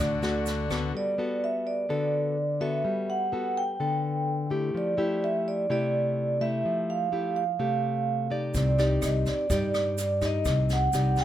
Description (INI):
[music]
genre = bossa nova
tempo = 126 BPM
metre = 4/4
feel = straight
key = G major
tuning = A4 = 441 Hz
[part]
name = vibraphone with medium mallets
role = melody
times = 0.0-11.2 s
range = D5 to G5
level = -28 LUFS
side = right 2 dB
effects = none
[part]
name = nylon-string guitar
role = accompaniment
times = 0.0-11.2 s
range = C3 to D5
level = -29 LUFS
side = left 2 dB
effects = none
[part]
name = pipe organ, trumpet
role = sustained chords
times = 0.0-0.9 s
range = D3 to F#4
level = -36 LUFS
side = left 8 dB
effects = none
[part]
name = upright bass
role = bass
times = 0.0-0.9, 8.5-11.2 s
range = C2 to G2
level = -27 LUFS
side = equal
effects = none
[part]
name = jazz brush drum kit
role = drums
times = 0.2-0.8, 8.5-11.2 s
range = kick drum, rim click, snare drum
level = -34 LUFS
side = equal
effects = none
[part]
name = tube shaker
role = percussion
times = 0.2-0.9, 8.5-11.2 s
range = none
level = -42 LUFS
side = right 8 dB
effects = none
[sound]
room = light reverb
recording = none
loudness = -25 LUFS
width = side -12 dB against mid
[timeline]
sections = 0.9-11.2 A section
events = none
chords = 0.0 D; 0.9 Gmaj9; 4.7 Fmaj9; 8.5 Cmadd9